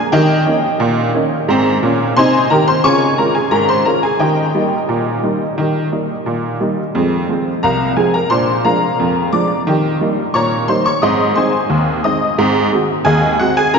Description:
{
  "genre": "ragtime piano",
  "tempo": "88 BPM",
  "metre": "2/4",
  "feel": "straight",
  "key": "Ab major",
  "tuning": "A4 = 440 Hz",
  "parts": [
    { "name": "honky-tonk upright piano", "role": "solo", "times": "0.0-13.8 s", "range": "C2 to Eb6", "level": "-12 LUFS", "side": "equal", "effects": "none" }
  ],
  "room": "wet cathedral reverb, RT60 6.3 s",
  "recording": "in a vast, echoing space, nothing above 7.7 kHz",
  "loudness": "-13 LUFS",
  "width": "side -5 dB against mid",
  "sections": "0.0-13.8 A section",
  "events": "none",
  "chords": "0.1 Eb7; 1.5 Ab; 2.8 Db; 4.2 Eb; 6.9 Fm; 8.3 Bb7; 9.7 Eb7; 11.0 Ab; 12.4 Ab7"
}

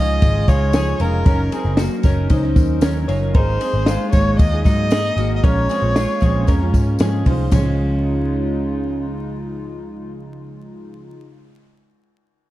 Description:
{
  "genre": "jangly indie pop",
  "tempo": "115 BPM",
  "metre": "4/4",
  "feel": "straight",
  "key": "Db major",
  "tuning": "A4 = 440 Hz",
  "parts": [
    { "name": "dark violin", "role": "melody", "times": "0.0-7.0 s", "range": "Bb4 to Eb5", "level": "-23 LUFS", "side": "equal", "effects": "slapback echo" },
    { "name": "picked steel-string acoustic guitar", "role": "accompaniment", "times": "0.0-11.3 s", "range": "Bb2 to Bb4", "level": "-28 LUFS", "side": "right 4 dB", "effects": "none" },
    { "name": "hollow soft pad", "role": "sustained chords", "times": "0.0-11.1 s", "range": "Db3 to Bb4", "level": "-28 LUFS", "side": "left 1 dB", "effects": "chorus" },
    { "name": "twelve-string electric guitar", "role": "arpeggios", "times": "0.0-9.1 s", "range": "Gb3 to Db5", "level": "-24 LUFS", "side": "equal", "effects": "spring reverb" },
    { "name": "vintage muted picked electric bass", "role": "bass", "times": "0.0-11.1 s", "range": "F1 to Ab2", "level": "-20 LUFS", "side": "equal", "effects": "none" },
    { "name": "compact cocktail drum kit", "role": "drums", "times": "0.2-7.6 s", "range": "hi-hat, kick drum, ride cymbal, snare drum, toms", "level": "-17 LUFS", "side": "equal", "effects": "none" },
    { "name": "tambourine", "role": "percussion", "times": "0.2-7.8 s", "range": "none", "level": "-42 LUFS", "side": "left 11 dB", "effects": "none" }
  ],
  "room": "light reverb, studio reverb",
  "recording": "dark, warm production, vinyl crackle",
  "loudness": "-15 LUFS",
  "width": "side -15 dB against mid",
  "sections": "0.0-7.5 A section; 7.5-11.7 B section",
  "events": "none",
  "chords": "0.0 Dbadd9; 1.3 Gb6; 3.3 Absus2; 5.4 Bbm7; 7.5 Dbadd9"
}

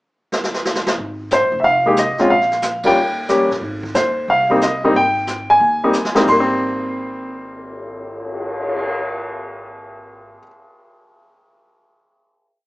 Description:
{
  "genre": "jazz piano trio",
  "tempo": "182 BPM",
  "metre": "4/4",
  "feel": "swing 64% on 8ths",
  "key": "Ab major",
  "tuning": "A4 = 440 Hz",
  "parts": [
    { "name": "jazz brush drum kit", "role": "drums", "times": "0.3-8.8 s", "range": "brushed snare drum, crash cymbal, cymbal swell, hi-hat, kick drum, ride cymbal, snare drum", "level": "-24 LUFS", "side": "equal", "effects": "none" },
    { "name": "upright bass", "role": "bass", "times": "1.0-10.4 s", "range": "F1 to Eb2", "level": "-31 LUFS", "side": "equal", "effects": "none" },
    { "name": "warm baby grand piano", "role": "melody", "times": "1.3-10.5 s", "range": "Ab2 to C6", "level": "-14 LUFS", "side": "equal", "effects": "none" }
  ],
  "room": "wet club reverb, RT60 0.7 s",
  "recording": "heard from further back in the room, small speaker sound",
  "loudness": "-15 LUFS",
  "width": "side -19 dB against mid",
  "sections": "0.0-1.0 pickup bar; 1.0-6.3 A section; 6.3-8.9 final chord",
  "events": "drum fill 0.3-1.0, 5.9-6.3; band accent 2.8",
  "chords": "0.0 N.C.; 1.0 Absus2; 1.6 Fm7; 2.3 Bb5; 3.0 Eb7; 3.6 Abmaj7; 6.3 Abmaj9"
}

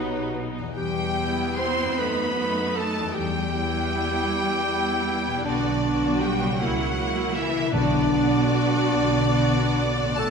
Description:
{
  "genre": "classical, slow romantic movement for symphony orchestra",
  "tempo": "44-53 BPM (dotted quarters)",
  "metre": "6/8",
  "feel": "rubato",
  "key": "E minor",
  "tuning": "A4 = 439 Hz",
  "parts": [
    { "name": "rich studio violin section", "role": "melody", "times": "0.0-10.3 s", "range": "B4 to C6", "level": "-32 LUFS", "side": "left 1 dB", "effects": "none" },
    { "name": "dark clarinet", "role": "second line", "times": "0.0-10.3 s", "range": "D4 to C5", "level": "-27 LUFS", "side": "left 1 dB", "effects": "none" },
    { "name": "rich studio violin section", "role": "second line", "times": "0.0-10.3 s", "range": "B3 to C6", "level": "-30 LUFS", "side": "left 1 dB", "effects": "none" },
    { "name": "rich studio viola section", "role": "accompaniment", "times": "0.0-10.2 s", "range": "A3 to F#4", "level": "-29 LUFS", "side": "right 1 dB", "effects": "none" },
    { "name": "concert harp", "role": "arpeggios", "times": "0.0-10.3 s", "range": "E2 to G4", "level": "-33 LUFS", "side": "left 7 dB", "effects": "none" },
    { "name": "clear studio cello section", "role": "bass", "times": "0.0-10.3 s", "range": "B2 to C4", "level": "-31 LUFS", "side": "right 3 dB", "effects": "none" },
    { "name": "rich studio double bass section", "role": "bass", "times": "0.0-10.3 s", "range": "A1 to F#2", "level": "-29 LUFS", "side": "right 3 dB", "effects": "none" },
    { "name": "timpani", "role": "percussion", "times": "7.7-8.9 s", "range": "B2", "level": "-31 LUFS", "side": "left 1 dB", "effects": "none" }
  ],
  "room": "wet scoring stage reverb, RT60 1.6 s",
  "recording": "minimal, uncompressed stereo recording",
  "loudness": "-21 LUFS",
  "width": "side -6 dB against mid",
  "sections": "0.8-10.3 A section",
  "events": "none",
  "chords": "0.0 B; 0.8 Em; 2.0 D#dim/F#; 3.2 Em; 5.4 Bm; 6.6 A#dim/C#; 7.7 Bm"
}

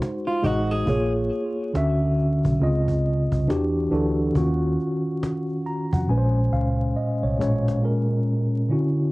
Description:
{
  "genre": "lo-fi hip hop",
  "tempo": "69 BPM",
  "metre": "4/4",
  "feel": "swing 62% on 16ths",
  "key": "Bb minor",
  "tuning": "A4 = 440 Hz",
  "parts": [
    { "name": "mellow tine electric piano", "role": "accompaniment", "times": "0.0-9.1 s", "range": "Bb2 to Bb5", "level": "-22 LUFS", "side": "equal", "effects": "medium stereo tremolo, low-pass filter, cassette tape" },
    { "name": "cajon", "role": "drums", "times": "0.0-7.8 s", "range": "none", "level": "-29 LUFS", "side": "equal", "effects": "cassette tape" },
    { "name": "electric guitar at the edge of break-up", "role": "second line", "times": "0.3-1.1 s", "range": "F4 to Ab4", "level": "-28 LUFS", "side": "right 1 dB", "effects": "low-pass filter, cassette tape, tape echo" },
    { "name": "vintage muted fingered electric bass", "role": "bass", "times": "0.4-7.8 s", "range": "A1 to F2", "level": "-26 LUFS", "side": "equal", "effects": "none" }
  ],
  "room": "moderate studio ambience, RT60 0.5 s",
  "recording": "home recording on cassette, vinyl crackle",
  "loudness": "-20 LUFS",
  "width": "side -21 dB against mid",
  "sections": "0.0-7.8 A section; 7.8-9.1 B section",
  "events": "tine electric piano fill 5.2-7.8; drum fill 6.1-7.8",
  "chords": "0.0 Ab7; 0.9 Bbm7; 1.7 Dmaj9; 2.6 Dbmaj9; 3.5 Em9; 4.3 Ebm9; 6.1 Bbm9; 7.8 Bbm7"
}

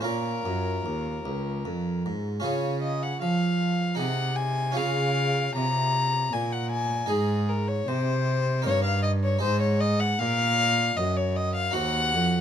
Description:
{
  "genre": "classical, baroque-style sonata movement with continuo",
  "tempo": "77 BPM",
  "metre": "3/4",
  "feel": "straight",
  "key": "Db major",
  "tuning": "A4 = 440 Hz",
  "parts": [
    { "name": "warm violin", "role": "melody", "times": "0.0-12.4 s", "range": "Ab4 to Bb5", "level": "-27 LUFS", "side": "left 4 dB", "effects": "none" },
    { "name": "harpsichord", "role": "accompaniment", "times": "0.0-12.4 s", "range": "Db2 to C5", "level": "-31 LUFS", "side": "right 2 dB", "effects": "none" },
    { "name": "rich cello", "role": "bass", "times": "0.0-12.4 s", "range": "Db2 to F3", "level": "-27 LUFS", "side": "right 1 dB", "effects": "none" }
  ],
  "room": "light reverb",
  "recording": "close, detailed microphones",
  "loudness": "-23 LUFS",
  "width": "side -9 dB against mid",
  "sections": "0.0-2.4 A section; 2.4-12.4 A section",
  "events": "none",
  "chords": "0.1 Bbm; 2.4 Db; 4.0 Ab7/C; 4.8 Db; 7.1 Ab; 8.7 Eb/G; 9.4 Ab5; 11.7 Cdim/Eb"
}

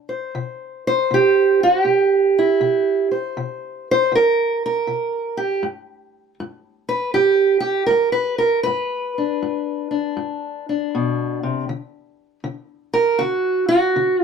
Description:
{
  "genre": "acoustic country blues, solo or duo",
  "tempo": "79 BPM",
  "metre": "4/4",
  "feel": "swing 66% on 8ths",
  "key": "G major",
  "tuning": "A4 = 440 Hz",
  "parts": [
    { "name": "fingerpicked steel-string acoustic guitar", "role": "solo", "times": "0.0-14.2 s", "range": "G2 to C5", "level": "-17 LUFS", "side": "right 2 dB", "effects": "none" }
  ],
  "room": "light reverb",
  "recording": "none",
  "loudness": "-17 LUFS",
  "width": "side -6 dB against mid",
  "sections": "0.0-14.2 A section",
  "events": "none",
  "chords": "0.0 N.C.; 5.6 G; 11.7 N.C."
}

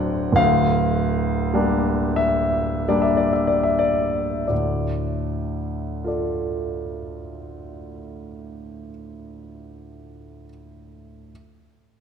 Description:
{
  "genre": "classical, romantic nocturne for solo piano",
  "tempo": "34-57 BPM",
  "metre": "3/4",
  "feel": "rubato",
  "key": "D minor",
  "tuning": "A4 = 441 Hz",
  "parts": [
    { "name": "clear grand piano", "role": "solo", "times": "0.0-11.3 s", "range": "D1 to G5", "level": "-21 LUFS", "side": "left 1 dB", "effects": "none" }
  ],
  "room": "wet concert hall reverb, RT60 2.3 s",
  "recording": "minimal, uncompressed stereo recording",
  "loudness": "-19 LUFS",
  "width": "side -7 dB against mid",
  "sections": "0.0-4.5 A section; 4.5-9.2 B section",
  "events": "slowing down 0.0-4.5",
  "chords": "0.4 Gm/D; 4.5 Dm"
}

